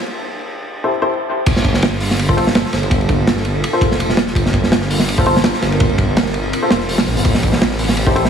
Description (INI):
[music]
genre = drum and bass, jungle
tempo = 166 BPM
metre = 4/4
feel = swing 54% on 16ths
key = G dorian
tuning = A4 = 440 Hz
[part]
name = dark grand piano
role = stabs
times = 0.8-8.2 s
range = E4 to C5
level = -21 LUFS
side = left 2 dB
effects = dub echo
[part]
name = ethereal airy pad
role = sustained chords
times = 2.0-8.3 s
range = A3 to Bb4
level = -22 LUFS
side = right 1 dB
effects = ensemble chorus, built-in reverb, tremolo, vintage 12-bit sampler grit
[part]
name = detuned saw bass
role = bass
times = 1.5-8.3 s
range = F1 to Bb1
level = -19 LUFS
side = right 1 dB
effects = tube saturation
[part]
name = crunchy breakbeat drum kit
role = drums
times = 1.5-8.3 s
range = crash cymbal, hi-hat, kick drum, ride cymbal, snare drum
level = -16 LUFS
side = right 1 dB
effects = high-pass filter on kick, high-pass filter on cymbals, high-pass filter on hats, high-pass filter on snare, high-pass filter on room
[sound]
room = light reverb, studio reverb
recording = heavily compressed radio sound, studio ambience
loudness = -13 LUFS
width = side -7 dB against mid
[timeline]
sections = 0.0-1.5 A section; 1.5-8.3 B section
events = break 0.0-1.5; drop 1.5-8.3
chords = 0.0 Am7; 1.5 Gm11; 7.3 Am7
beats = | 0.02 0.38 0.74 1.11 | 1.47 1.83 2.19 2.55 | 2.91 3.27 3.64 4.00 | 4.36 4.72 5.08 5.44 | 5.80 6.17 6.53 6.89 | 7.25 7.61 7.97